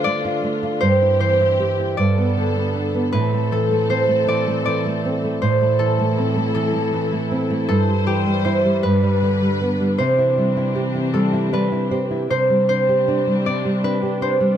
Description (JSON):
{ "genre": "children's music, lullaby", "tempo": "52 BPM (dotted quarters)", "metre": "6/8", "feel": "rubato", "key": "C major", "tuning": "A4 = 439 Hz", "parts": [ { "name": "concert harp", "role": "melody", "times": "0.0-14.6 s", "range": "G4 to D5", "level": "-21 LUFS", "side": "equal", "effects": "none" }, { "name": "nylon-string guitar", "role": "accompaniment", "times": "0.0-14.6 s", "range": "G2 to D5", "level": "-20 LUFS", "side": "right 2 dB", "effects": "none" }, { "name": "muted studio string section", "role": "sustained chords", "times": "0.0-14.6 s", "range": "G2 to C5", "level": "-26 LUFS", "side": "left 4 dB", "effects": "none" } ], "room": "little or no reverb", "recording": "close, detailed microphones", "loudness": "-17 LUFS", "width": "side -10 dB against mid", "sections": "0.0-12.3 A section; 12.3-14.6 B section", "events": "nylon-string guitar fill 11.1-12.3", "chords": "0.0 Dm; 0.8 C/G; 2.0 Gadd9; 3.1 Am; 7.7 C/G; 8.8 G; 10.0 Cadd9; 12.3 Csus2", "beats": "| 0.83 1.98 | 3.14 4.29 | 5.43 6.57 | 7.70 8.84 | 9.99 11.13 | 12.30 13.46" }